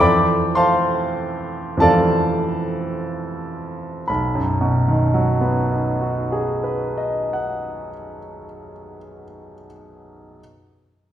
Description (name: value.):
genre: classical, impressionist solo piano.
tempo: 24-38 BPM (dotted quarters).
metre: 6/8.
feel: rubato.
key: unclear.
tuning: A4 = 440 Hz.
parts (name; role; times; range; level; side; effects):
bright grand piano; solo; 0.0-10.4 s; B1 to D6; -18 LUFS; equal; none.
room: wet recital hall reverb, RT60 1.5 s.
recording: heard from further back in the room.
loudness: -18 LUFS.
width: side -11 dB against mid.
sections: 0.0-4.1 A section; 4.1-8.2 B section.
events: slowing down 0.0-4.1.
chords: 0.0 Fmaj7; 4.1 B6.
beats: | 0.01 1.80 | 4.08 6.14.